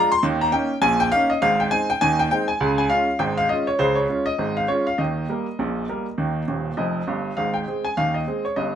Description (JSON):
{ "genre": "ragtime piano", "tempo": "101 BPM", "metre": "2/4", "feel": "swing 58% on 16ths", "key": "Ab major", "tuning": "A4 = 440 Hz", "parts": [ { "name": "clear baby grand piano", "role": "solo", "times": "0.0-8.8 s", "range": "Eb1 to C6", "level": "-19 LUFS", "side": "equal", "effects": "none" } ], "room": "wet studio reverb, RT60 0.6 s", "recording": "band playing live in one room", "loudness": "-19 LUFS", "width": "side -9 dB against mid", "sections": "0.0-7.4 A section; 7.4-8.8 B section", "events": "grand piano fill 6.5-7.4", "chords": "0.2 Eb5; 1.4 Ab; 2.6 Db; 5.0 Eb; 7.4 Ab", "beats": "| 0.23 0.82 | 1.41 2.01 | 2.60 3.19 | 3.79 4.38 | 4.98 5.58 | 6.18 6.78 | 7.37 7.97 | 8.56" }